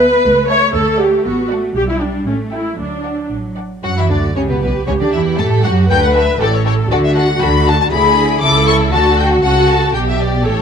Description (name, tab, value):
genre	quick classical-period movement for string orchestra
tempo	118 BPM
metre	2/4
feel	straight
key	D major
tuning	A4 = 440 Hz
part	warm symphonic violin section	melody	0.0-10.6 s	B4 to D6	-18 LUFS	left 6 dB	none
part	warm symphonic violin section	second line	0.0-10.6 s	B3 to G5	-20 LUFS	left 2 dB	none
part	warm symphonic viola section	accompaniment	0.0-10.6 s	C#4 to C#5	-16 LUFS	equal	none
part	warm studio cello section	bass	0.0-10.6 s	D2 to B3	-20 LUFS	right 1 dB	none
part	warm studio double bass section	bass	0.0-10.6 s	A1 to A2	-18 LUFS	right 2 dB	none
room	light reverb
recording	close, detailed microphones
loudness	-12 LUFS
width	side -7 dB against mid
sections	0.0-3.8 A section; 3.8-10.6 B section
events	none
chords	0.2 A/C#; 0.7 D; 1.8 G/B; 2.3 A7(no3); 2.8 D; 3.8 D/F#; 4.4 G; 4.9 A7(no3); 5.9 D; 6.4 A7; 6.9 D; 7.9 E7/D; 8.4 A/C#; 8.9 D; 9.9 G/B